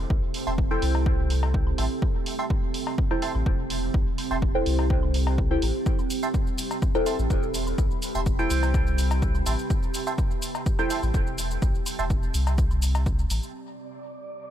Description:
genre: dub techno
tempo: 125 BPM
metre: 4/4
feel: straight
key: unclear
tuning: A4 = 440 Hz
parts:
  - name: deep dark ambient pad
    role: sustained chords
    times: 0.0-14.5 s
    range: C4 to B5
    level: -33 LUFS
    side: right 3 dB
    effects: chorus, built-in reverb, sidechain pumping
  - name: warm sub bass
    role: bass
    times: 0.0-13.4 s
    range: E1 to C2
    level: -26 LUFS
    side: equal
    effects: sidechain pumping
  - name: electronic kick drum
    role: drums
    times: 0.1-13.2 s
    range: none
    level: -25 LUFS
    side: equal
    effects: none
  - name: electronic hi-hat and shaker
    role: drums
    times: 0.3-13.5 s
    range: none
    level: -35 LUFS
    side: right 1 dB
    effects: low-pass filter on hats, low-pass filter on perc
  - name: wavetable chord stab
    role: riff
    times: 0.5-12.0 s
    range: E5 to C6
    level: -36 LUFS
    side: right 4 dB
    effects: sidechain pumping, dub echo
  - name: deep mellow chord stab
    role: stabs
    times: 0.7-10.9 s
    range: E4 to G5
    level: -31 LUFS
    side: equal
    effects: chorus, phaser, sidechain pumping, dub echo
  - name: woodblock and cowbell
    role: percussion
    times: 0.8-13.0 s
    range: none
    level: -39 LUFS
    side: left 5 dB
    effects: sidechain pumping on perc, dub echo
  - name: wind-like tuned noise texture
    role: texture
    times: 13.7-14.5 s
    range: D5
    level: -40 LUFS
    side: right 3 dB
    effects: built-in reverb, sidechain pumping
room: little or no reverb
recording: none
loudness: -22 LUFS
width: side -11 dB against mid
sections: 0.0-13.5 A section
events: none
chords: 0.0 Am7; 13.5 Em7

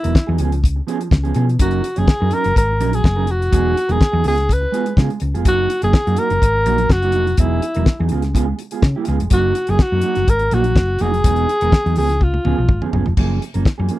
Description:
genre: disco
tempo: 124 BPM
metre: 4/4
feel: straight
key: F# major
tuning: A4 = 441 Hz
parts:
  - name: breathy alto saxophone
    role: melody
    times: 0.0-12.9 s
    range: E4 to B4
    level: -19 LUFS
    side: equal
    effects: none
  - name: mellow electric guitar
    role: accompaniment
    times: 0.0-14.0 s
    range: E#3 to C#5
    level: -23 LUFS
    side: right 7 dB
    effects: none
  - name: hollow-body short-scale fingered electric bass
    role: bass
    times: 0.0-13.9 s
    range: E1 to C#3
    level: -19 LUFS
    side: left 1 dB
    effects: none
  - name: damped 70s drum kit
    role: drums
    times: 0.0-14.0 s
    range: crash cymbal, hi-hat, kick drum, snare drum, toms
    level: -15 LUFS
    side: left 1 dB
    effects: none
room: little or no reverb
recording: dry, close 1970s-style studio recording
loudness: -14 LUFS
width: side -16 dB against mid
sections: 0.0-13.2 A section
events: drum fill 12.2-13.2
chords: 0.4 C#7; 1.6 F#6; 3.5 Emaj9; 4.2 C#7; 5.5 F#6; 7.4 Emaj9; 8.1 C#7; 9.3 F#6; 11.2 Emaj9; 12.0 C#7; 13.2 F#maj9

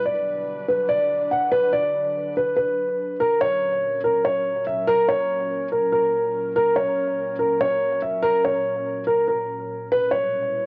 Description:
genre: hip hop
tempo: 143 BPM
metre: 4/4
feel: half-time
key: unclear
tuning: A4 = 439 Hz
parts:
  - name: dark grand piano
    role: melody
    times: 0.0-10.7 s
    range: A#4 to F#5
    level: -22 LUFS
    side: equal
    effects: low-pass filter, cassette tape, tape echo
  - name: warbly tape-like pad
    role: sustained chords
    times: 0.0-10.7 s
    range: A#2 to B4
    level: -36 LUFS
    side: equal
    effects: chorus, built-in reverb, cassette tape
room: light reverb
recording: home recording on cassette, nothing above 10.9 kHz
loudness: -22 LUFS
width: mono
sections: 0.0-3.2 A section; 3.2-10.7 B section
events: none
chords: 0.0 Bm; 3.2 F#; 9.9 Em

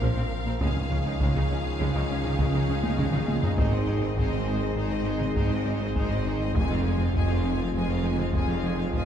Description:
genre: cinematic, hybrid orchestral and electronic film score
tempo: 101 BPM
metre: 5/4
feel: straight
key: unclear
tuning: A4 = 440 Hz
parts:
  - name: rich symphonic violin section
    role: melody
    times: 0.0-9.1 s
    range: C5 to Ab5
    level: -36 LUFS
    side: left 4 dB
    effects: none
  - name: bright symphonic violin section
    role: second line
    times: 0.0-9.1 s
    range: F4 to C5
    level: -41 LUFS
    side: left 3 dB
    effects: none
  - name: rich symphonic viola section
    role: accompaniment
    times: 0.0-9.1 s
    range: F3 to Eb4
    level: -38 LUFS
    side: right 2 dB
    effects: none
  - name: clear trombone section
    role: sustained chords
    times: 0.0-9.1 s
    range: Eb3 to Bb3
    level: -38 LUFS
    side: right 2 dB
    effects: none
  - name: dark French horn section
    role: sustained chords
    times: 0.0-9.1 s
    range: C4 to Ab4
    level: -36 LUFS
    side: left 4 dB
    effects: none
  - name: sweeping resonant pad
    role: sustained chords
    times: 0.0-9.1 s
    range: F3 to Db5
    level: -38 LUFS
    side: equal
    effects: chorus
  - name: thumb-piano-like synth pluck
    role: arpeggios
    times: 0.0-9.0 s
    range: Db3 to C5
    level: -38 LUFS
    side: right 3 dB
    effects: none
  - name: rubbery square bass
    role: riff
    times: 0.0-9.0 s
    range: Db2 to Bb3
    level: -33 LUFS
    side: left 2 dB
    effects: none
  - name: mellow tuba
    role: bass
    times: 0.0-9.1 s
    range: F1 to Db2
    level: -33 LUFS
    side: right 2 dB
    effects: none
  - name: rich symphonic cello section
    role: bass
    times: 0.0-9.1 s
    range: F2 to Db3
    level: -34 LUFS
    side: right 2 dB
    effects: none
  - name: rich symphonic double bass section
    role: bass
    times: 0.0-9.1 s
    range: F1 to Db2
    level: -32 LUFS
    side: right 2 dB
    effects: none
  - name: wide detuned saw bass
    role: bass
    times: 0.0-9.1 s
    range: F1 to Db2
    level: -34 LUFS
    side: equal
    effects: chorus
  - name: solo taiko drums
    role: drums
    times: 0.0-9.1 s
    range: none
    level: -29 LUFS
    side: equal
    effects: none
room: wet scoring stage reverb, RT60 1.6 s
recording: heard from further back in the room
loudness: -24 LUFS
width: side -9 dB against mid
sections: 0.0-9.1 A section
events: drum fill 2.8-3.6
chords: 0.0 Bbsus2; 0.6 Dbadd9; 3.6 Ab; 6.6 Fm

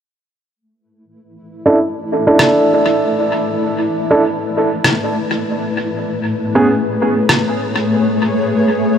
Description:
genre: ambient dub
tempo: 98 BPM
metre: 4/4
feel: swing 58% on 16ths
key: E mixolydian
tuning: A4 = 439 Hz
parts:
  - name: granular cloud pad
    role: sustained chords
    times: 1.6-9.0 s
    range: A3 to D5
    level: -18 LUFS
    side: left 2 dB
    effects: built-in reverb
  - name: warm upright piano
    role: stabs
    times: 1.7-6.7 s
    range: B3 to A4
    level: -15 LUFS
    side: right 1 dB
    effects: low-pass filter, dub echo
  - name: electronic rim click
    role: drums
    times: 2.4-7.4 s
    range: none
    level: -19 LUFS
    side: left 1 dB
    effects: overdrive, dub echo
room: moderate huge ambient reverb, RT60 7.1 s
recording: none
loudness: -13 LUFS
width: side -8 dB against mid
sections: 0.6-9.0 A section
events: fade-in on ambient pad 0.6-9.0; filter sweep on upright piano 0.6-9.0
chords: 0.6 E7sus4; 5.5 Amaj9

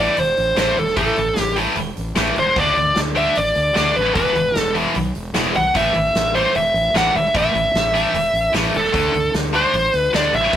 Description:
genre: hard rock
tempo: 151 BPM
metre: 4/4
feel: straight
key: A dorian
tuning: A4 = 444 Hz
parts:
  - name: high-gain lead guitar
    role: melody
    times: 0.0-10.6 s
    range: A4 to F#5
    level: -17 LUFS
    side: equal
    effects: distortion
  - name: heavy high-gain guitar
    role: riff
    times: 0.0-10.6 s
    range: E2 to D4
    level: -21 LUFS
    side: equal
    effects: distortion
  - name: fuzz fingered electric bass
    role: bass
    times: 0.0-10.6 s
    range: E1 to D2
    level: -25 LUFS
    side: equal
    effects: overdrive
  - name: huge arena drum kit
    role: drums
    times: 0.2-10.6 s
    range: hi-hat, kick drum, snare drum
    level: -25 LUFS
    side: right 1 dB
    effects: none
room: light reverb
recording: rough rehearsal-room recording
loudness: -15 LUFS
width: side -10 dB against mid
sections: 0.0-10.6 A section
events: none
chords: 0.0 Am; 2.6 D5; 4.2 E5; 5.8 A5; 8.9 D5

